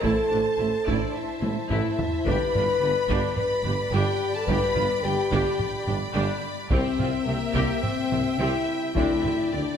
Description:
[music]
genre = cinematic, epic orchestral film score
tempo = 108 BPM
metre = 4/4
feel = straight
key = unclear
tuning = A4 = 441 Hz
[part]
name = rich symphonic violin section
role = melody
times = 0.0-9.8 s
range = Bb4 to B5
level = -34 LUFS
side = left 2 dB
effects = none
[part]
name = clear symphonic violin section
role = second line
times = 0.0-9.8 s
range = C5 to B5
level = -33 LUFS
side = left 1 dB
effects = none
[part]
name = rich studio viola section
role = accompaniment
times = 0.0-9.6 s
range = A3 to G4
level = -32 LUFS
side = right 3 dB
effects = none
[part]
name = dark French horn section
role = sustained chords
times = 0.0-9.8 s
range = Bb3 to B4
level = -26 LUFS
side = left 3 dB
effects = none
[part]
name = clear symphonic double bass section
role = bass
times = 0.0-9.6 s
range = G1 to D2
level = -33 LUFS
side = right 4 dB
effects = none
[part]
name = dark symphonic cello section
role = bass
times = 0.0-9.6 s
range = G2 to D3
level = -32 LUFS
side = right 2 dB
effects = none
[part]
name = warm tuba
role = bass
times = 0.0-9.7 s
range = G1 to D2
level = -34 LUFS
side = right 4 dB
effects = none
[part]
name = taiko ensemble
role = drums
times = 0.0-9.5 s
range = none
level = -30 LUFS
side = equal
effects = none
[part]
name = timpani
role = percussion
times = 8.9-9.8 s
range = D3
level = -34 LUFS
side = equal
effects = none
[part]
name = reverse cymbal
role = sound effects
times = 9.7-9.8 s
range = none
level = barely audible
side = none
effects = none
[sound]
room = moderate scoring stage reverb, RT60 2.0 s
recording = none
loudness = -22 LUFS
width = side -8 dB against mid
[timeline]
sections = 0.0-9.8 A section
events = drum fill 1.4-2.3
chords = 0.0 Am; 2.3 G; 6.7 C; 9.0 D7(no3)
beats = | 0.04 0.59 1.15 1.71 | 2.27 2.83 3.38 3.93 | 4.49 5.04 5.60 6.16 | 6.72 7.27 7.83 8.39 | 8.96 9.53

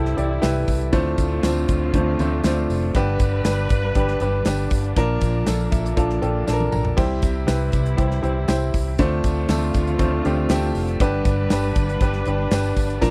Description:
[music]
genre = piano-driven pop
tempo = 119 BPM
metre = 4/4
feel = straight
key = unclear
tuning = A4 = 440 Hz
[part]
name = warm upright piano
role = accompaniment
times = 0.0-13.1 s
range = G2 to Bb5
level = -25 LUFS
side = equal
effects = none
[part]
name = warm studio string section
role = sustained chords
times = 0.0-13.1 s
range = C3 to B4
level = -33 LUFS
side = equal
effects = none
[part]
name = vintage muted fingered electric bass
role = bass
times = 0.0-13.1 s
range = F1 to D2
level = -26 LUFS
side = equal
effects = none
[part]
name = modern studio drum kit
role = drums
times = 0.1-13.1 s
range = crash cymbal, hi-hat, kick drum, snare drum, toms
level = -25 LUFS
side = equal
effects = none
[part]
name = tambourine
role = percussion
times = 0.4-13.1 s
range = none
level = -45 LUFS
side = equal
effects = none
[sound]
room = little or no reverb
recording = dry, close 1970s-style studio recording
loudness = -21 LUFS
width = mono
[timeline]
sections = 0.0-13.1 A section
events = upright piano fill 5.5-7.0; drum fill 6.5-7.0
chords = 0.0 C; 0.9 Dm7; 3.0 G; 5.0 Bb; 7.0 C; 9.0 Dm7; 11.0 G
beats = 0.43 | 0.94 1.44 1.95 2.45 | 2.95 3.46 3.96 4.46 | 4.97 5.47 5.97 6.48 | 6.98 7.48 7.99 8.49 | 8.99 9.50 10.00 10.50 | 11.01 11.51 12.01 12.51 | 13.02

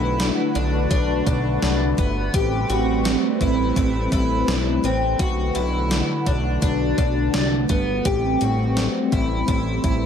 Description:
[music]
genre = dream pop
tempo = 84 BPM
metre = 4/4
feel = straight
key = A dorian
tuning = A4 = 440 Hz
[part]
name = phased analog pad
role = sustained chords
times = 0.0-10.1 s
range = D3 to B4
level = -24 LUFS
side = right 1 dB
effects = phaser, chorus
[part]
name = picked twelve-string acoustic guitar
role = arpeggios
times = 0.0-10.1 s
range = B3 to G4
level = -24 LUFS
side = left 4 dB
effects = analog chorus, tape echo
[part]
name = fat analog bass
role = bass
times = 0.0-10.1 s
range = G1 to C2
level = -24 LUFS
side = equal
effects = none
[part]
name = gated 80s digital drum machine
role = drums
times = 0.2-10.0 s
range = hi-hat, kick drum, snare drum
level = -24 LUFS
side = equal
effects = gated reverb, gated reverb snare, overdrive
[sound]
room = light reverb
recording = lossy compression artefacts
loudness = -18 LUFS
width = side -8 dB against mid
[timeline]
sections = 0.0-10.1 A section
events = none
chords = 0.0 Bm7; 2.3 Am9; 5.2 Bm7; 8.1 Am9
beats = 0.20 0.91 1.63 | 2.34 3.06 3.77 4.48 | 5.20 5.91 6.63 7.34 | 8.05 8.77 9.48

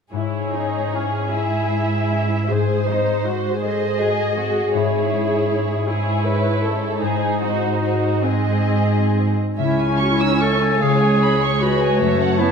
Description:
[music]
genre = classical, slow romantic movement for symphony orchestra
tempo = 42-55 BPM (dotted quarters)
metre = 6/8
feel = rubato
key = C# minor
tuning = A4 = 440 Hz
[part]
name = muted studio violin section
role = melody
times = 0.1-12.5 s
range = B#4 to A5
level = -28 LUFS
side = left 2 dB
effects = none
[part]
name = muted studio violin section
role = second line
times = 0.1-12.5 s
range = E4 to E6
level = -24 LUFS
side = equal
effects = none
[part]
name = muted studio viola section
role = accompaniment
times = 0.1-12.5 s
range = G#3 to G#4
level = -24 LUFS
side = right 1 dB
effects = none
[part]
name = concert harp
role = arpeggios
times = 0.1-12.5 s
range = F#2 to B4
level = -24 LUFS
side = left 6 dB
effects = none
[part]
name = muted studio cello section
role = bass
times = 0.1-12.5 s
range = C#2 to G#2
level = -23 LUFS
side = right 2 dB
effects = none
[part]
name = bright clarinet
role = second line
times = 9.6-12.5 s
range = D#4 to A4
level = -20 LUFS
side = right 1 dB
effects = none
[sound]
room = moderate scoring stage reverb, RT60 1.8 s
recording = none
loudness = -17 LUFS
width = side -6 dB against mid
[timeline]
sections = 0.1-9.6 A section; 9.6-12.5 B section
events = none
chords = 0.1 C#m/G#; 2.5 G#7b9; 4.7 C#m/G#; 7.0 G#7; 9.6 C#m; 10.8 C#7; 12.0 F#m7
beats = | 0.12 1.33 | 2.50 3.63 | 4.74 5.88 | 7.02 8.23 | 9.58 10.81 | 12.00

